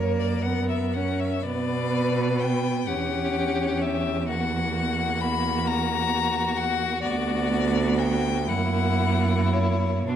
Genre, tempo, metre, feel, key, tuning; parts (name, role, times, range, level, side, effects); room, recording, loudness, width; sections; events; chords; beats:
classical, slow romantic movement for string quartet; 35-45 BPM (dotted quarters); 6/8; rubato; A4 = 442 Hz
rich violin; melody; 0.0-10.2 s; B4 to B5; -28 LUFS; left 7 dB
rich violin; second line; 0.0-10.2 s; D4 to B4; -30 LUFS; left 3 dB
rich viola; accompaniment; 0.0-10.2 s; A#3 to C#4; -28 LUFS; right 2 dB
rich cello; bass; 0.0-10.2 s; D2 to B2; -26 LUFS; right 3 dB
moderate scoring stage reverb, RT60 1.7 s; dark, warm production; -22 LUFS; side -9 dB against mid
0.0-10.2 A section
0.0 F#; 1.4 Bm; 2.9 C#dim/E; 4.3 F#7/E; 7.0 Bm/D; 8.5 F#7
| 1.44 2.88 | 4.29 5.67 | 7.03 8.48 | 10.08